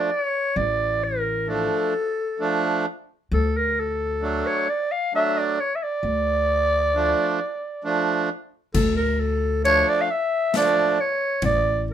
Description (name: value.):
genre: klezmer.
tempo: 66 BPM.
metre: 3/4.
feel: straight.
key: D harmonic minor.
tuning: A4 = 440 Hz.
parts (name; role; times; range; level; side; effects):
growling clarinet; melody; 0.0-11.9 s; A4 to F5; -22 LUFS; equal; none.
accordion; accompaniment; 0.0-11.0 s; F3 to D4; -24 LUFS; right 3 dB; none.
upright bass; bass; 0.6-11.9 s; A1 to D2; -25 LUFS; left 1 dB; none.
street-band drum kit; drums; 8.7-11.6 s; crash cymbal, kick drum, ride cymbal, snare drum; -28 LUFS; left 3 dB; none.
room: moderate studio reverb, RT60 0.6 s.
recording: minimal, uncompressed stereo recording.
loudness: -20 LUFS.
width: side -9 dB against mid.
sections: 0.0-8.7 A section; 8.7-11.9 A section.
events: speeding up 0.0-11.9.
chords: 0.0 Dm; 3.3 D; 6.0 Dm.